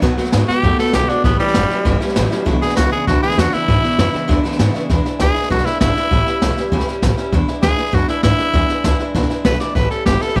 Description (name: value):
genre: rockabilly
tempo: 198 BPM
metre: 4/4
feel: straight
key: E mixolydian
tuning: A4 = 439 Hz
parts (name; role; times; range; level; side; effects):
- picked acoustic archtop guitar; accompaniment; 0.0-10.4 s; E2 to F#4; -25 LUFS; equal; none
- electric guitar through a small old amp; riff; 0.0-4.9 s; E2 to A3; -26 LUFS; equal; none
- upright bass; bass; 0.0-10.4 s; F#1 to B2; -21 LUFS; equal; none
- jazz brush drum kit; drums; 0.0-10.4 s; hi-hat, kick drum, snare drum, splash cymbal; -22 LUFS; equal; none
- growling tenor saxophone; melody; 0.5-10.4 s; G3 to D5; -22 LUFS; equal; tape echo
room: small room ambience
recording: none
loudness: -16 LUFS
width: mono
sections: 0.0-4.9 A section; 4.9-10.4 B section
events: tenor saxophone solo 0.0-4.9; drum fill 9.6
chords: 0.0 B7; 1.2 A7; 2.5 E7; 6.1 A7; 7.3 E7; 9.8 A7